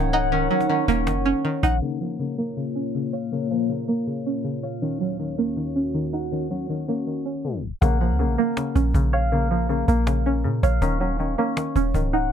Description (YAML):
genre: hip hop, trap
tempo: 160 BPM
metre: 4/4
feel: half-time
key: Bb minor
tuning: A4 = 439 Hz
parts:
  - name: string-like resonator pluck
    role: accompaniment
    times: 0.0-12.3 s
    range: Db3 to Db5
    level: -26 LUFS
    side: right 3 dB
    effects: chorus, phaser, low-pass filter
  - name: warbly tape-like pad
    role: sustained chords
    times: 0.0-7.8 s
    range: Eb2 to Gb5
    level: -28 LUFS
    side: equal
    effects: chorus, built-in reverb, phaser
  - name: concert harp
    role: arpeggios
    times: 0.0-12.3 s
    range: Bb3 to Gb5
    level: -28 LUFS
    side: left 5 dB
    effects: low-pass filter, digital delay
  - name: warm 808-style bass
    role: bass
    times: 0.0-1.8, 7.8-12.3 s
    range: Db1 to Bb2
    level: -22 LUFS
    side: equal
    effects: none
  - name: cajon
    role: drums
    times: 0.1-12.2 s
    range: none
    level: -30 LUFS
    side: equal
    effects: none
room: light reverb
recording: dark, warm production, low-pass filter, tape stop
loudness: -21 LUFS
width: side -8 dB against mid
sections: 0.0-1.8 A section; 1.8-7.8 B section; 7.8-12.3 C section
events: filter sweep 1.8-7.8; kick muted 7.1-7.8; tape stop 7.4-7.8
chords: 0.0 Ebm7; 1.8 Bbm; 4.8 Ebm7; 7.8 Bbm; 10.8 Ebm7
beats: | 0.32 0.69 1.07 1.44 | 1.82 2.19 2.57 2.94 | 3.32 3.69 4.07 4.44 | 4.82 5.19 5.57 5.94 | 6.32 6.69 7.07 7.44 | 7.82 8.19 8.57 8.94 | 9.32 9.69 10.07 10.44 | 10.82 11.19 11.57 11.94 | 12.32